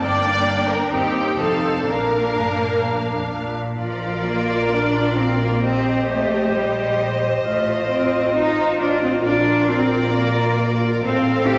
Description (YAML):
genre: quick classical-period movement for string orchestra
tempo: 132 BPM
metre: 4/4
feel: rubato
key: Bb major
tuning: A4 = 440 Hz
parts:
  - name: rich studio violin section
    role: melody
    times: 0.0-11.6 s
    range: D5 to G5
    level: -28 LUFS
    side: equal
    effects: none
  - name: clear studio violin section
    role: second line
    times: 0.0-11.6 s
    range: G4 to D5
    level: -26 LUFS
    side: equal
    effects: none
  - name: rich studio viola section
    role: accompaniment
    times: 0.0-11.6 s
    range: Bb3 to A4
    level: -27 LUFS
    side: equal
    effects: none
  - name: clear studio cello section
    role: bass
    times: 0.0-11.6 s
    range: Eb2 to G4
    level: -25 LUFS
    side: equal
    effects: none
  - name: clear studio double bass section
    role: bass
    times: 0.0-11.6 s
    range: F1 to Eb2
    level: -29 LUFS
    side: equal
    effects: none
room: wet concert hall reverb, RT60 1.9 s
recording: nothing above 8.0 kHz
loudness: -20 LUFS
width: mono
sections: 0.0-3.8 A section; 3.8-11.6 B section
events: none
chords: 0.0 Gm; 0.9 Cm/Eb; 1.4 F7; 1.9 Bb; 5.6 Cm7/Bb; 7.4 F7/A; 9.2 Bb; 11.0 F/A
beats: | 0.03 0.48 0.94 1.40 | 1.88 2.36 2.84 3.32 | 3.80 4.26 4.71 5.17 | 5.63 6.09 6.55 7.00 | 7.45 7.90 8.36 8.80 | 9.25 9.70 10.15 10.60 | 11.04 11.49